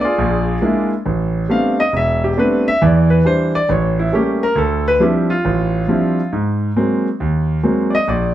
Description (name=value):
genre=solo jazz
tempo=137 BPM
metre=4/4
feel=swing 67% on 8ths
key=A minor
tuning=A4 = 440 Hz
part: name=clear concert grand piano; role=solo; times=0.0-8.3 s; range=E1 to F5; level=-14 LUFS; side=equal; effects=none
room=light reverb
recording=none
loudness=-14 LUFS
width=side -12 dB against mid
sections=0.0-1.1 A section; 1.1-8.3 B section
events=grand piano solo 1.1-8.3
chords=0.2 Bb7#11; 1.1 Am11; 2.8 Em7; 3.7 A7b9; 4.6 Dm11; 6.3 G#9